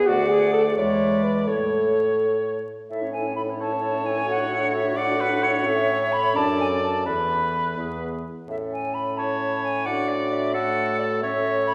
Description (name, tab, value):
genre	quick classical-period movement for wind quintet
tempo	86 BPM (dotted quarters)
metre	6/8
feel	straight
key	A major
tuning	A4 = 440 Hz
part	hollow concert flute	melody	0.0-11.7 s	C#5 to B5	-30 LUFS	equal	none
part	warm French horn	accompaniment	0.0-11.7 s	A3 to C#5	-28 LUFS	equal	none
part	clear oboe	second line	0.1-11.7 s	A4 to D5	-30 LUFS	equal	none
part	clear clarinet	accompaniment	0.1-11.7 s	G#3 to C#5	-33 LUFS	equal	none
part	warm bassoon	bass	0.1-11.7 s	D2 to A2	-30 LUFS	equal	none
room	wet recital hall reverb, RT60 1.4 s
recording	heard from further back in the room, vinyl crackle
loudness	-23 LUFS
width	mono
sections	0.0-2.9 A section; 2.9-11.7 B section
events	none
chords	0.1 D; 0.8 E7; 1.5 A; 4.3 D/A; 5.7 A; 6.4 D/F#; 7.1 Esus4; 7.8 E; 8.5 A; 9.9 D/A; 11.2 A